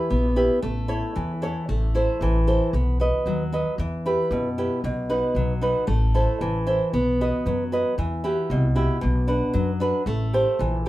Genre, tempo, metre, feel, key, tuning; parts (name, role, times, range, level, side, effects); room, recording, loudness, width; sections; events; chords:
greek folk, Greek bouzouki band; 114 BPM; 2/4; straight; E harmonic minor; A4 = 440 Hz
nylon-string guitar; accompaniment; 0.0-10.9 s; B2 to D#5; -23 LUFS; equal
upright bass; bass; 0.1-10.9 s; A1 to F#2; -24 LUFS; equal
moderate studio reverb, RT60 0.5 s; band playing live in one room; -21 LUFS; side -16 dB against mid
0.0-8.0 A section; 8.0-10.9 B section
0.0 Em; 0.6 A; 1.7 Am; 2.7 B; 3.8 Em; 4.8 B; 5.9 Am; 6.9 B; 8.0 Emadd9; 9.0 Bm; 10.1 Am7